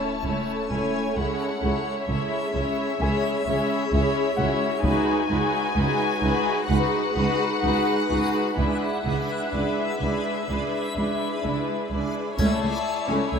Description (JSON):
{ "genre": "cinematic, suspense film score", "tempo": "64 BPM", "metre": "4/4", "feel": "straight", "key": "C# minor", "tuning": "A4 = 440 Hz", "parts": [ { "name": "muted symphonic violin section", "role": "melody", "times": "0.0-13.4 s", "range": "E5 to A5", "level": "-31 LUFS", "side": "left 5 dB", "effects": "none" }, { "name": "muted studio violin section", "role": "second line", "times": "0.0-13.4 s", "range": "E4 to C#5", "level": "-29 LUFS", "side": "left 5 dB", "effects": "none" }, { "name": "muted studio viola section", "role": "accompaniment", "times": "0.0-13.4 s", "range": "G#3 to D#4", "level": "-27 LUFS", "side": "right 2 dB", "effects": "none" }, { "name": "backwards swelling texture", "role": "sustained chords", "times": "0.0-13.4 s", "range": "G#4 to F#5", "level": "-31 LUFS", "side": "left 1 dB", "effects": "built-in reverb" }, { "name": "sub drop", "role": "sound effects", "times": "0.0-1.2 s", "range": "none", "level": "-46 LUFS", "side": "left 1 dB", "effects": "none" }, { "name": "bright baby grand piano", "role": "texture", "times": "0.0-13.4 s", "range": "E4 to G#6", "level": "-37 LUFS", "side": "left 3 dB", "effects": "none" }, { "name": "muted studio cello section", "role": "bass", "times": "0.2-13.4 s", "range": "C#2", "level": "-30 LUFS", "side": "right 2 dB", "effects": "none" }, { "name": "muted studio double bass section", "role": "bass", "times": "0.2-13.4 s", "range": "C#2", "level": "-29 LUFS", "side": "right 3 dB", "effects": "none" }, { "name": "taiko ensemble", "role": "drums", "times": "4.8-6.7, 12.4-13.4 s", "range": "none", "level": "-30 LUFS", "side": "left 2 dB", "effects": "none" }, { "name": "triangle", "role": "percussion", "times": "12.4-13.4 s", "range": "none", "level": "-42 LUFS", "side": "left 4 dB", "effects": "none" } ], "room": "light reverb", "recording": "close, detailed microphones", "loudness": "-22 LUFS", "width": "side -6 dB against mid", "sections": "0.0-13.4 A section", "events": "impact 0.0-1.2", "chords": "0.0 A/C#; 1.2 C#m; 4.8 G#m7/C#; 8.6 E7/C#; 12.4 A/C#" }